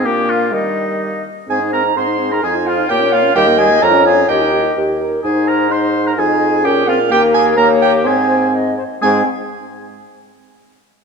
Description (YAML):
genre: quick classical-period movement for wind quintet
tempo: 128 BPM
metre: 2/4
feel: straight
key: Ab major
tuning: A4 = 440 Hz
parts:
  - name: hollow concert flute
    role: melody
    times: 0.0-9.3 s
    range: C4 to G5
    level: -19 LUFS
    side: left 8 dB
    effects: none
  - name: warm oboe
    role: second line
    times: 0.0-9.2 s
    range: Eb4 to C5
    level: -21 LUFS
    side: left 3 dB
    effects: none
  - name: clear French horn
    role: accompaniment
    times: 0.0-9.2 s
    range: G3 to Bb4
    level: -19 LUFS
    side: left 1 dB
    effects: none
  - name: warm clarinet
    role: accompaniment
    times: 0.0-9.2 s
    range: D4 to C6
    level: -18 LUFS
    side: right 7 dB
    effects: none
  - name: dark bassoon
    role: bass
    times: 0.0-9.2 s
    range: Eb2 to Eb3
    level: -19 LUFS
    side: right 3 dB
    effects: none
room: wet concert hall reverb, RT60 2.3 s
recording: none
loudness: -12 LUFS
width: side -5 dB against mid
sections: 0.0-1.5 A section; 1.5-9.0 B section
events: none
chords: 0.1 Bb; 0.5 Eb; 1.5 Ab; 2.4 Fm7; 2.9 Bbm; 3.4 Eb; 3.8 Db/F; 4.3 Eb; 5.2 Ab; 6.2 Fm7; 6.6 Bbm; 7.1 Eb5; 8.1 Ab